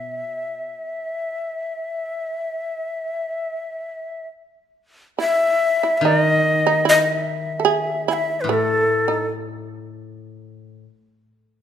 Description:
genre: japanese traditional, Japanese chamber music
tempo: 67-77 BPM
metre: 4/4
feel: rubato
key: E ryukyu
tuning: A4 = 439 Hz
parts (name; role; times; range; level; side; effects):
- breathy bright shakuhachi; melody; 0.0-9.3 s; A4 to G#5; -20 LUFS; left 2 dB; none
- shamisen; second line; 0.0-9.3 s; A3 to A4; -22 LUFS; right 8 dB; none
- koto; accompaniment; 0.0-0.2, 6.0-10.8 s; A2 to D#3; -26 LUFS; left 2 dB; none
room: moderate recital hall reverb, RT60 1.6 s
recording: minimal, uncompressed stereo recording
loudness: -19 LUFS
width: side -9 dB against mid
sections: 0.0-5.2 A section; 5.2-11.6 B section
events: none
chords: none

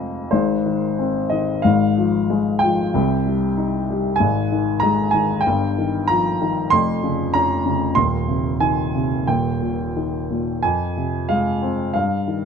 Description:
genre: classical, lyrical solo piano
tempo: 87-97 BPM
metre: 4/4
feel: rubato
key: Ab major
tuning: A4 = 443 Hz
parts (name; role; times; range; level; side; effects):
- warm upright piano; solo; 0.0-12.4 s; Eb1 to C6; -18 LUFS; left 1 dB; none
room: light reverb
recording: close, detailed microphones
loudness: -17 LUFS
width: side -6 dB against mid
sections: 0.3-10.6 A section; 10.6-12.4 B section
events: none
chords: 0.3 Ab; 1.6 Fm/Ab; 2.9 Cm; 4.2 Ab5; 5.4 Ebadd9/G; 6.7 Bbm/F; 8.0 Ab/Eb; 9.3 Eb; 10.6 Fm; 11.9 Eb/G

